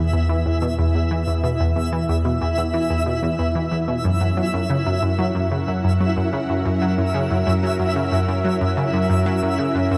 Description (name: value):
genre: ambient, sequencer-driven space music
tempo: 92 BPM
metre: 4/4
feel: straight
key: unclear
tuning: A4 = 440 Hz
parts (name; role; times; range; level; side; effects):
- lush unison pad; sustained chords; 0.0-10.0 s; E3 to F#5; -33 LUFS; equal; chorus
- analog pluck; riff; 0.0-10.0 s; E2 to F#3; -23 LUFS; equal; chorus, cassette tape, delay
- analog drone; bass; 0.0-10.0 s; E2 to F#2; -29 LUFS; equal; none
- twinkling granular texture; texture; 0.0-10.0 s; E4 to E5; -27 LUFS; equal; built-in reverb
room: wet cathedral reverb, RT60 6.3 s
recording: in a vast, echoing space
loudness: -21 LUFS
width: mono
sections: 0.0-10.0 A section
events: fade-in on analog synth pad 0.0-10.0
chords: 0.0 E; 4.0 F#